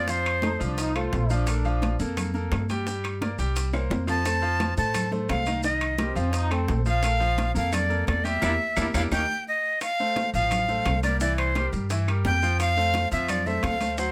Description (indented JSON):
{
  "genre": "latin, salsa",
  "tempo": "173 BPM",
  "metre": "4/4",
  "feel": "straight",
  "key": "unclear",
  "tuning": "A4 = 440 Hz",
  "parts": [
    { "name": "breathy bright jazz flute", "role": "melody", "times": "0.0-0.6, 4.1-14.1 s", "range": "C5 to A5", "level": "-28 LUFS", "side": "equal", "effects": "plate reverb" },
    { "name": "bright concert grand piano", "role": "accompaniment", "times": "0.0-14.1 s", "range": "Eb3 to G5", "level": "-34 LUFS", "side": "equal", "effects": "none" },
    { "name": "upright bass", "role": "bass", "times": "0.0-14.1 s", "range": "A1 to A2", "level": "-29 LUFS", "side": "equal", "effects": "none" },
    { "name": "bongos", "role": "percussion", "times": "0.1-14.1 s", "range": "none", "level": "-40 LUFS", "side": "equal", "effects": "none" },
    { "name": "congas", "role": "percussion", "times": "0.1-14.1 s", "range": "none", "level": "-37 LUFS", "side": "equal", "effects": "none" },
    { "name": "maracas", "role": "percussion", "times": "0.1-14.1 s", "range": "none", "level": "-43 LUFS", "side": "equal", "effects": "none" },
    { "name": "claves", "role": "percussion", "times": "0.3-13.8 s", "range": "none", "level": "-41 LUFS", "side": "equal", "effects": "none" },
    { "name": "timbales", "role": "percussion", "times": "0.3-14.0 s", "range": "none", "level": "-38 LUFS", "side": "equal", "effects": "none" },
    { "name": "clear trombone section", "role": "second line", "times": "0.4-2.0, 6.0-9.2 s", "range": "Bb3 to F4", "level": "-34 LUFS", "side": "equal", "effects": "none" }
  ],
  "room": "light reverb",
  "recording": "none",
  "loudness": "-25 LUFS",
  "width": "mono",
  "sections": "0.0-9.8 A section; 9.8-14.1 B section",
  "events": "drum fill 3.7-4.3; band accent 8.4-9.8",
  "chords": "0.1 F; 1.5 Bbmaj7; 2.9 Gm; 3.6 C5; 4.3 F; 5.6 Cm7; 6.3 F; 7.0 Bbmaj7; 8.4 Em7b5; 9.1 Eb; 9.8 Bbmaj7sus2/A (rootless); 11.2 C7; 12.6 F",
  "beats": "| 0.09 0.44 0.78 1.13 | 1.48 1.82 2.17 2.52 | 2.87 3.21 3.56 3.91 | 4.26 4.60 4.95 5.30 | 5.65 5.99 6.34 6.69 | 7.04 7.38 7.73 8.08 | 8.42 8.77 9.12 9.47 | 9.81 10.16 10.51 10.86 | 11.20 11.55 11.90 12.25 | 12.59 12.94 13.29 13.64 | 13.98"
}